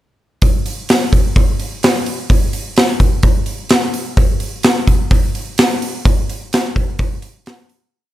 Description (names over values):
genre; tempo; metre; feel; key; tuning
rock; 128 BPM; 4/4; straight; none; none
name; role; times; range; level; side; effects
big rock drum kit; drums; 0.4-7.8 s; hi-hat, kick drum, snare drum; -13 LUFS; equal; none
room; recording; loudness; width
little or no reverb; dark, warm production; -13 LUFS; side -14 dB against mid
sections
0.4-7.9 verse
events
fade-out 6.1-7.9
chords
none